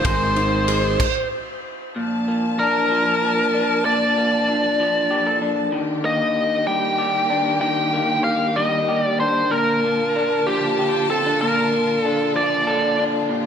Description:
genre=six-eight pop ballad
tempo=64 BPM (dotted quarters)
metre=6/8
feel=straight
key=Bb major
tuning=A4 = 438 Hz
part: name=biting lead guitar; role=melody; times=0.0-13.0 s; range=G4 to G5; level=-20 LUFS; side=equal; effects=overdrive, digital delay
part: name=electric guitar through a small old amp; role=accompaniment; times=0.0-13.5 s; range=Bb2 to C5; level=-23 LUFS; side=left 1 dB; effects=none
part: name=warm studio string section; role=sustained chords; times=0.0-13.5 s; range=C3 to A5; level=-26 LUFS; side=equal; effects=none
part: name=picked steel-string acoustic guitar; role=arpeggios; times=0.0-1.1 s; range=Eb3 to C4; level=-31 LUFS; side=right 8 dB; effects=none
part: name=fretless electric bass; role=bass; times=0.0-1.0 s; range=Ab1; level=-24 LUFS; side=equal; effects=none
part: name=loose indie drum kit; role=drums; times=0.0-1.1 s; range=crash cymbal, kick drum, ride cymbal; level=-26 LUFS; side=equal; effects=none
room=moderate plate reverb, RT60 1.6 s, small room ambience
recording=bright 1980s-style digital production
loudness=-17 LUFS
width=side -8 dB against mid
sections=0.0-1.9 A section; 1.9-13.5 A section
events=stop 1.0-1.9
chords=0.0 Ab; 1.0 N.C.; 1.9 Bbmaj7; 5.7 Ebmaj7; 9.5 Bbmaj7

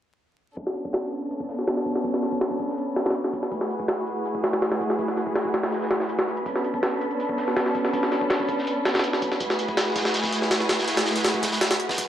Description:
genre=drum and bass, jungle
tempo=163 BPM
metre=4/4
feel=straight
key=B dorian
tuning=A4 = 437 Hz
part: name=dark chamber string section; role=sustained chords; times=0.6-12.1 s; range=A3 to A4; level=-27 LUFS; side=equal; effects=none
part: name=crunchy breakbeat drum kit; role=drums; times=0.6-12.1 s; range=hi-hat, snare drum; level=-32 LUFS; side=right 1 dB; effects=high-pass filter on hats, high-pass filter on snare, high-pass filter on room
part: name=jungle sampler-style drum kit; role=drums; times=0.6-12.1 s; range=hi-hat, kick drum, snare drum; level=-25 LUFS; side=equal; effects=high-pass filter on hats, high-pass filter on kick, high-pass filter on snare, high-pass filter on room
part: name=wind-like tuned noise texture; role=texture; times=1.3-12.1 s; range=B4 to B5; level=-33 LUFS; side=right 3 dB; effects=built-in reverb
room=moderate lush hall reverb, RT60 1.8 s, small room ambience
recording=vinyl crackle, low-pass filter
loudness=-22 LUFS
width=side -10 dB against mid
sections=0.6-12.1 A section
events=filter sweep 0.6-12.1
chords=0.6 Bm9; 3.5 F#m9; 6.5 Bm9; 9.4 F#m9

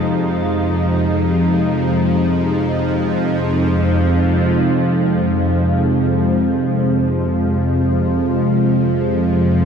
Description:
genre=dark ambient drone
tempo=free time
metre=none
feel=none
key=F minor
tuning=A4 = 440 Hz
part: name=sweeping resonant pad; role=sustained chords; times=0.0-9.7 s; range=C3 to F4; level=-17 LUFS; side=right 1 dB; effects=chorus
part: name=bowed-like drone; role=drone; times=0.0-9.7 s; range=F2 to F3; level=-17 LUFS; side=left 1 dB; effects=built-in reverb, phaser
part: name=icy glass pad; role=texture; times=0.0-4.6 s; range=F5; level=-40 LUFS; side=right 3 dB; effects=none
room=wet huge ambient reverb, RT60 7.3 s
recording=dark, warm production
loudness=-14 LUFS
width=side -7 dB against mid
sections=0.0-4.6 A section; 4.6-9.7 B section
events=none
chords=0.0 Fm

